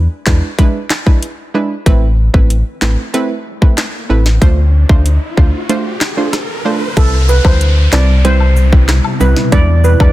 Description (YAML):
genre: dancehall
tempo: 94 BPM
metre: 4/4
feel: straight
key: unclear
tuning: A4 = 439 Hz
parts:
  - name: sub bass with octave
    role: bass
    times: 0.0-10.1 s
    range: A1 to E2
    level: -10 LUFS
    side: equal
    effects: none
  - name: analog pluck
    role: accompaniment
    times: 0.3-10.1 s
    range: G3 to C5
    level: -18 LUFS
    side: right 3 dB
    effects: chorus, sidechain pumping
  - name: island pop drum kit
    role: drums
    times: 0.3-10.1 s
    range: handclaps, hi-hat, kick drum, rim click, snare drum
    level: -11 LUFS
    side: equal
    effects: overdrive
  - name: riser and downlifter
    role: sound effects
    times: 3.5-10.1 s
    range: none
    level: -24 LUFS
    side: left 1 dB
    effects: none
  - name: steel pan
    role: melody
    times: 7.0-10.1 s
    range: A4 to D5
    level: -17 LUFS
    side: right 2 dB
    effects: digital delay
  - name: granular cloud pad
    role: sustained chords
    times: 7.9-10.1 s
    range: B2 to E4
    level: -20 LUFS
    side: left 1 dB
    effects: built-in reverb, sidechain pumping
  - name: cabasa and woodblock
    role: percussion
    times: 7.3-10.1 s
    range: none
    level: -26 LUFS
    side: left 8 dB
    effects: none
room: digital ambience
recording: dense, heavily limited modern master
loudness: -10 LUFS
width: side -16 dB against mid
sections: 0.0-7.0 A section; 7.0-10.1 B section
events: riser 3.5-7.0; break 5.7-7.0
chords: 0.0 E7; 1.9 Amadd9; 4.4 Dm7; 7.0 Cmaj7; 9.5 E7